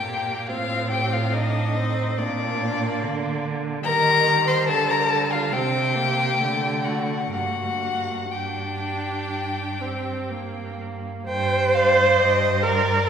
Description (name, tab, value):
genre	classical, slow romantic movement for string quartet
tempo	60-74 BPM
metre	4/4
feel	rubato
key	G minor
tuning	A4 = 439 Hz
part	rich violin	melody	0.0-13.1 s	D5 to C6	-25 LUFS	left 6 dB	none
part	rich violin	second line	0.0-13.1 s	D4 to G5	-29 LUFS	equal	none
part	rich viola	accompaniment	0.0-13.1 s	G3 to C5	-25 LUFS	right 2 dB	none
part	clear cello	bass	0.0-13.1 s	G2 to Eb3	-27 LUFS	right 3 dB	none
room	wet concert hall reverb, RT60 2.5 s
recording	recorded in a church or concert hall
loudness	-20 LUFS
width	side -8 dB against mid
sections	0.0-11.3 A section; 11.3-13.1 A section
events	none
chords	0.5 F13/A; 2.2 Bb; 3.9 Eb; 5.5 C5; 6.4 D; 7.3 Gm; 11.3 G5